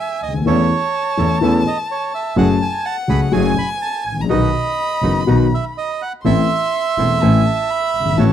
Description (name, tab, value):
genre	tango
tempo	125 BPM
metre	4/4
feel	rubato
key	unclear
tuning	A4 = 440 Hz
part	bandoneon	melody	0.0-8.3 s	C#5 to B5	-21 LUFS	right 7 dB	none
part	warm violin	second line	0.0-8.3 s	F#5 to C6	-24 LUFS	left 3 dB	none
part	warm double bass	bass	0.2-8.3 s	E1 to E2	-19 LUFS	right 3 dB	none
part	dark concert grand piano	accompaniment	0.3-8.3 s	E1 to A4	-17 LUFS	left 5 dB	none
part	bandoneon	stabs	0.5-8.3 s	A3 to A4	-29 LUFS	right 7 dB	none
room	studio ambience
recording	dry, close 1970s-style studio recording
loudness	-15 LUFS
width	side -10 dB against mid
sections	0.0-8.3 A section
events	none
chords	0.5 A/E; 2.4 F#madd9; 4.3 B; 6.2 Am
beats	| 0.47 0.94 1.42 1.90 | 2.37 2.85 3.33 3.81 | 4.29 4.78 5.27 5.76 | 6.25 6.73 7.21 7.69 | 8.18